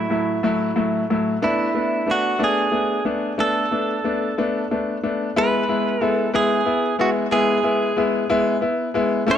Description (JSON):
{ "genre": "pop", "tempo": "61 BPM (dotted quarters)", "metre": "6/8", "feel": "straight", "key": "unclear", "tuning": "A4 = 439 Hz", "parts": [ { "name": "direct-recorded clean electric guitar", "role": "melody", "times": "0.0-9.4 s", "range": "E4 to C#5", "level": "-22 LUFS", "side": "right 3 dB", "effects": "ping-pong delay" }, { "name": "bright grand piano", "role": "accompaniment", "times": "0.0-9.4 s", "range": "A2 to E4", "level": "-20 LUFS", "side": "left 2 dB", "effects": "none" } ], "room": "moderate plate reverb, RT60 2.8 s", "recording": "dark, warm production", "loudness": "-18 LUFS", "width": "side -9 dB against mid", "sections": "0.0-5.4 A section; 5.4-9.4 B section", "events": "none", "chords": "0.0 F#m7/A; 1.4 Bm7; 5.4 E" }